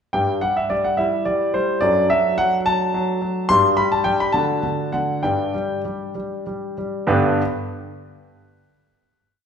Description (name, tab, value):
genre	classical-period piano sonatina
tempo	65-73 BPM (dotted quarters)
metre	6/8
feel	straight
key	G major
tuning	A4 = 440 Hz
part	clear concert grand piano	solo	0.1-7.4 s	F#2 to C6	-18 LUFS	equal	none
room	wet recital hall reverb, RT60 1.7 s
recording	recorded in a church or concert hall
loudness	-18 LUFS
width	side -7 dB against mid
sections	0.1-7.1 A section; 7.1-8.9 final chord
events	slowing down 2.7-7.1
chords	0.1 G5; 1.0 Cadd9/G; 1.8 D/F#; 3.5 G5; 4.3 D; 5.2 G5; 7.1 G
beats	| 0.14 0.99 | 1.83 2.66 | 3.49 4.35 | 5.24 6.16 | 7.08